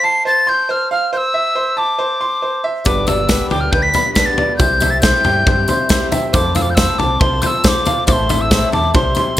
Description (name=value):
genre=indie folk with a building arrangement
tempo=138 BPM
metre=4/4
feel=straight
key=unclear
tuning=A4 = 439 Hz
part: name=hollow wooden whistle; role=melody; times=0.0-9.4 s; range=C6 to C7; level=-17 LUFS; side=left 1 dB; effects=none
part: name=bright upright piano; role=arpeggios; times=0.0-9.4 s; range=B4 to C6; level=-20 LUFS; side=right 3 dB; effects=slapback echo
part: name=picked twelve-string acoustic guitar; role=accompaniment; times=2.8-9.4 s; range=G2 to A4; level=-24 LUFS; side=left 5 dB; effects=none
part: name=bright upright piano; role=accompaniment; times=2.9-9.4 s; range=F1 to G5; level=-27 LUFS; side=right 2 dB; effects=none
part: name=fingered electric bass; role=bass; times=2.9-9.1 s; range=G1 to G2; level=-21 LUFS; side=equal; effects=none
part: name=loose indie drum kit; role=drums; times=2.9-9.3 s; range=kick drum, snare drum, toms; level=-16 LUFS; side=equal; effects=none
part: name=tambourine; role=percussion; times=2.9-9.4 s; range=none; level=-28 LUFS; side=left 4 dB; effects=none
room=light reverb, small room ambience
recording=none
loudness=-13 LUFS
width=side -13 dB against mid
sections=0.0-9.4 A section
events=upright piano fill 5.5-6.3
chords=0.0 F; 1.1 Am; 2.9 G; 4.6 C; 6.3 F; 8.1 Am